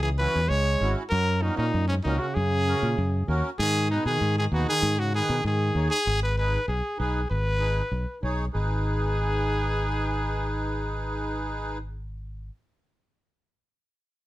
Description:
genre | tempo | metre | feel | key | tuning
latin | 194 BPM | 4/4 | straight | G# minor | A4 = 440 Hz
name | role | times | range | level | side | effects
warm trumpet | melody | 0.0-11.8 s | C#4 to C#5 | -28 LUFS | equal | none
bright trombone | second line | 0.0-5.9 s | G#2 to G#3 | -32 LUFS | right 4 dB | none
fingered electric bass | bass | 0.0-12.5 s | G#1 to B2 | -26 LUFS | equal | none
accordion | accompaniment | 0.2-11.8 s | C#4 to C#5 | -32 LUFS | right 1 dB | light tremolo tuning
room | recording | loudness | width
light reverb | none | -23 LUFS | side -16 dB against mid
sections
0.0-6.1 A section; 6.1-8.5 B section; 8.5-11.0 C section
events
none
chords
0.0 C#m; 1.1 F#; 3.6 G#m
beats
0.20 0.51 0.81 | 1.12 1.43 1.74 2.05 | 2.36 2.67 2.98 3.29 | 3.60 3.90 4.21 4.52 | 4.83 5.14 5.45 5.76 | 6.07 6.38 6.69 7.00 | 7.31 7.62 7.93 8.24 | 8.55 8.86 9.17 9.48 | 9.79 10.10 10.41 10.72

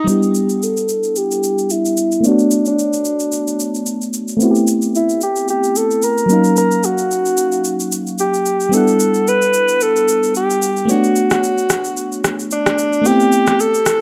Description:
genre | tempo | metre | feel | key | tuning
amapiano | 111 BPM | 4/4 | swing 55% on 16ths | E minor | A4 = 442 Hz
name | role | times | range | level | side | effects
breathy alto saxophone | melody | 0.0-14.0 s | D4 to B4 | -18 LUFS | equal | low-pass filter
FM electric piano | accompaniment | 0.0-14.0 s | F#3 to F#5 | -20 LUFS | equal | chorus, low-pass filter
electronic shaker and rim click | drums | 0.1-14.0 s | none | -24 LUFS | equal | none
room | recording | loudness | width
light reverb, digital ambience | none | -16 LUFS | mono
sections
0.1-14.0 A section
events
filter sweep 0.1-14.0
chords
0.1 Em9; 2.2 Bm9; 4.4 Am9; 6.3 D#m9; 8.7 Em9; 10.9 Bm9; 13.1 Am9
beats
| 0.08 0.62 1.16 1.70 | 2.24 2.78 3.32 3.86 | 4.40 4.94 5.48 6.03 | 6.57 7.11 7.65 8.19 | 8.73 9.27 9.81 10.35 | 10.89 11.43 11.97 12.51 | 13.05 13.59

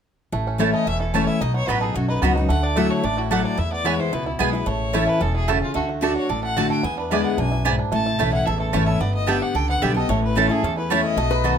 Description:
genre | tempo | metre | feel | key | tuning
bluegrass | 221 BPM | 4/4 | straight | A major | A4 = 440 Hz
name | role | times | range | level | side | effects
bluegrass banjo | melody | 0.3-11.6 s | A3 to A4 | -28 LUFS | right 6 dB | plate reverb
picked steel-string acoustic guitar | accompaniment | 0.3-11.6 s | E2 to G4 | -23 LUFS | left 3 dB | none
upright bass | bass | 0.3-11.6 s | E1 to E2 | -25 LUFS | equal | none
mandolin | stabs | 0.6-11.5 s | A3 to B5 | -23 LUFS | right 7 dB | none
clear fiddle | melody | 0.7-11.6 s | E4 to A5 | -28 LUFS | left 3 dB | plate reverb
lap resonator guitar | second line | 11.3-11.6 s | B4 | -22 LUFS | left 3 dB | none
room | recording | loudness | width
light reverb | close, detailed microphones | -19 LUFS | side -8 dB against mid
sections
0.3-11.6 A section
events
none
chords
0.3 A; 1.4 B; 2.5 Dadd9; 3.6 E; 4.7 A; 5.8 D; 6.8 E7; 7.9 A; 9.0 G; 10.1 A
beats
| 0.33 0.60 0.87 1.14 | 1.41 1.69 1.96 2.23 | 2.50 2.77 3.04 3.31 | 3.58 3.85 4.13 4.40 | 4.67 4.94 5.21 5.48 | 5.75 6.03 6.30 6.57 | 6.84 7.11 7.38 7.65 | 7.92 8.19 8.46 8.74 | 9.01 9.28 9.55 9.82 | 10.09 10.36 10.64 10.91 | 11.18 11.45

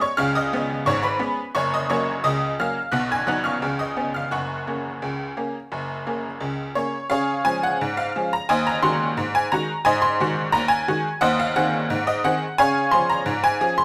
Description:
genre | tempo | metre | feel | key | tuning
ragtime piano | 87 BPM | 2/4 | straight | F# major, Db major from 7.1 s | A4 = 440 Hz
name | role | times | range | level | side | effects
tack piano | solo | 0.0-13.8 s | F#1 to G#6 | -22 LUFS | equal | none
room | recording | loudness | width
moderate stone room reverb, RT60 1.1 s | band playing live in one room | -23 LUFS | mono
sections
0.0-7.1 A section; 7.1-13.8 B section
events
none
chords
0.0 C#7; 1.5 F#; 2.9 B; 3.6 C#7; 4.3 F#; 7.1 Db; 8.5 Ab7/Eb; 11.2 Ab/Eb; 12.6 Db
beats
| 0.17 0.85 | 1.54 2.22 | 2.91 3.60 | 4.30 5.00 | 5.69 6.39 | 7.08 7.78 | 8.47 9.15 | 9.84 10.53 | 11.22 11.90 | 12.59 13.28

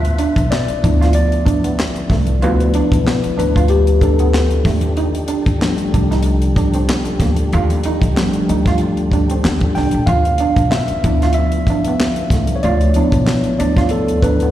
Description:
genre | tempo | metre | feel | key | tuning
R&B, neo-soul | 94 BPM | 4/4 | swing 56% on 16ths | D dorian | A4 = 441 Hz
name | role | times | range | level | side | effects
mellow tine electric piano | accompaniment | 0.0-14.5 s | F3 to G5 | -19 LUFS | left 2 dB | wide subtle chorus
percussive tonewheel organ | sustained chords | 0.0-14.5 s | D3 to A4 | -25 LUFS | equal | fast rotary speaker, chorus vibrato
upright bass | bass | 0.0-14.5 s | Bb1 to Eb2 | -17 LUFS | equal | none
tight funk drum kit | drums | 0.0-14.5 s | handclaps, hi-hat, kick drum, snare drum | -19 LUFS | equal | none
electric guitar through a small old amp | second line | 0.2-14.5 s | A3 to F4 | -23 LUFS | right 6 dB | spring reverb, slapback echo
room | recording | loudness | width
light reverb | live gig heard through the venue's PA, recital hall reverb | -13 LUFS | side -12 dB against mid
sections
0.0-14.5 A section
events
tine electric piano solo 0.0-14.5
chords
0.0 Dm69; 4.6 Ebmaj9#11; 10.1 Dm69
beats
0.50 1.14 1.77 | 2.41 3.05 3.69 4.33 | 4.97 5.61 6.24 6.88 | 7.52 8.16 8.80 9.43 | 10.07 10.71 11.35 11.99 | 12.63 13.26 13.90

